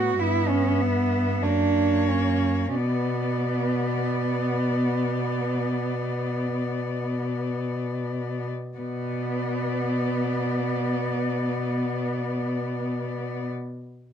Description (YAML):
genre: classical, lyrical piece for cello ensemble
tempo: free time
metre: none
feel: none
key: B minor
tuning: A4 = 440 Hz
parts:
  - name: clear cello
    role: melody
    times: 0.0-13.5 s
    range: C#5 to F#5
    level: -34 LUFS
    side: left 10 dB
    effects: none
  - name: rich cello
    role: second line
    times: 0.0-13.5 s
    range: B3 to F#4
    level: -28 LUFS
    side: right 6 dB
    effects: none
  - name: rich cello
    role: accompaniment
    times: 0.0-13.5 s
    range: A#3 to B3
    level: -30 LUFS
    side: left 4 dB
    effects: none
  - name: rich cello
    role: bass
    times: 0.0-13.5 s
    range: F#2 to B2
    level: -28 LUFS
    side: equal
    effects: none
room: light reverb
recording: dark, warm production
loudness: -23 LUFS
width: side -8 dB against mid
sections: 0.0-8.8 A section; 8.8-14.1 B section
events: slowing down 0.0-8.8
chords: 0.2 Em/G; 1.4 F#; 2.8 Bm